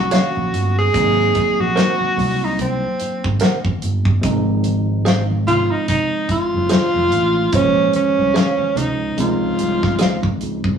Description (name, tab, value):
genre	lush 1970s-style soul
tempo	73 BPM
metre	4/4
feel	swing 58% on 16ths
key	unclear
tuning	A4 = 438 Hz
part	breathy tenor saxophone	melody	0.0-10.4 s	C4 to Ab4	-18 LUFS	right 2 dB	none
part	tine electric piano	accompaniment	0.0-10.8 s	F3 to F5	-22 LUFS	left 1 dB	overdrive
part	fingered electric bass	bass	0.0-10.8 s	F1 to Db2	-22 LUFS	right 1 dB	none
part	direct-recorded clean electric guitar	riff	0.1-10.2 s	Gb4 to Gb5	-23 LUFS	right 3 dB	none
part	damped 70s drum kit	drums	0.1-10.8 s	hi-hat, kick drum, snare drum	-21 LUFS	equal	none
part	congas	percussion	0.1-10.4 s	none	-28 LUFS	right 2 dB	none
room	wet stone room reverb, RT60 0.9 s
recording	rough rehearsal-room recording, tube saturation, small room ambience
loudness	-15 LUFS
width	side -7 dB against mid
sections	0.0-10.8 A section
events	none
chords	0.0 Ebm9 (rootless); 0.9 Ab9; 4.2 Fm7; 7.5 Bbm7; 9.2 Dbmaj7